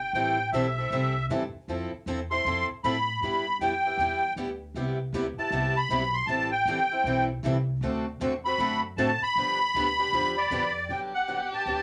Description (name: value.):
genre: acoustic string swing (jazz manouche).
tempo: 156 BPM.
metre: 4/4.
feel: swing 63% on 8ths.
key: unclear.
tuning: A4 = 441 Hz.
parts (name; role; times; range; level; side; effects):
musette accordion; melody; 0.0-11.8 s; D5 to C6; -28 LUFS; equal; none.
upright bass; bass; 0.0-11.8 s; G1 to A2; -36 LUFS; equal; none.
picked steel-string acoustic guitar; accompaniment; 0.1-10.6 s; C3 to A4; -39 LUFS; equal; none.
picked swing-style acoustic guitar; accompaniment; 0.1-11.8 s; C3 to A4; -34 LUFS; equal; none.
warm violin; second line; 10.9-11.8 s; G4; -36 LUFS; equal; none.
room: moderate club reverb, RT60 0.5 s.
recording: none.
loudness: -27 LUFS.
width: mono.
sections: 0.0-10.9 A section.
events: none.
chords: 0.1 Am7; 1.7 Fmaj7; 3.2 G6; 4.8 Cmaj7; 6.3 Am7; 7.8 D7; 9.4 G7; 10.9 Gmaj7.